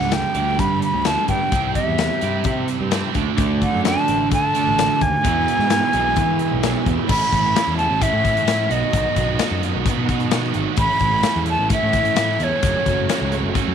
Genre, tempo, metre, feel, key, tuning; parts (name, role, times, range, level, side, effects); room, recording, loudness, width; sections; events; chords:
classic rock; 130 BPM; 4/4; straight; A lydian from 7.1 s; A4 = 435 Hz
silver concert flute; melody; 0.0-13.3 s; C#5 to B5; -20 LUFS; equal; slapback echo
tonewheel organ; sustained chords; 0.0-13.7 s; A3 to F#5; -33 LUFS; equal; slow rotary speaker, overdrive, chorus vibrato
distorted electric guitar; riff; 0.0-13.7 s; E2 to F#4; -24 LUFS; right 14 dB; distortion
fuzz picked electric bass; bass; 0.0-13.7 s; F#1 to E3; -24 LUFS; equal; overdrive
big rock drum kit; drums; 0.0-13.7 s; crash cymbal, hi-hat, kick drum, snare drum; -23 LUFS; left 4 dB
overdriven electric guitar; riff; 3.4-7.1 s; E2 to D4; -24 LUFS; equal
light reverb, small room ambience; 1960s-style stereo; -17 LUFS; side -8 dB against mid
0.0-7.1 A section; 7.1-13.7 B section
0.0 G; 1.5 C; 3.2 D; 5.2 E; 7.1 A; 8.7 B; 10.8 A; 12.6 F#m